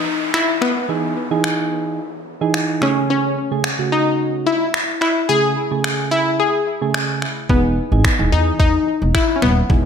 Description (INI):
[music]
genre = dance-pop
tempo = 109 BPM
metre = 4/4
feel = straight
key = E major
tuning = A4 = 439 Hz
[part]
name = analog pluck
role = melody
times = 0.0-9.9 s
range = B3 to G#4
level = -19 LUFS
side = left 3 dB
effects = chorus, analog delay
[part]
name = soft electric-piano-like synth keys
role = accompaniment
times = 0.0-9.9 s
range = C#3 to G#4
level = -22 LUFS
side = right 4 dB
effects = chorus, sidechain pumping
[part]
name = downlifter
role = sound effects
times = 0.0-3.1 s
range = none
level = -29 LUFS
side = equal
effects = none
[part]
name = detuned 8-bit digital drum machine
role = drums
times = 0.3-9.8 s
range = finger snaps, kick drum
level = -20 LUFS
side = equal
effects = none
[part]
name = upright bass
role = bass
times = 7.5-9.9 s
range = D#1 to E2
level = -17 LUFS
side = equal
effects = sidechain pumping
[sound]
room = wet plate reverb, RT60 1.3 s, digital ambience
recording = dreamy mix soaked in reverb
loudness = -16 LUFS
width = side -7 dB against mid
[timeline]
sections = 0.0-9.9 A section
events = none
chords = 0.0 Emaj7; 2.8 Amaj7; 7.5 Emaj7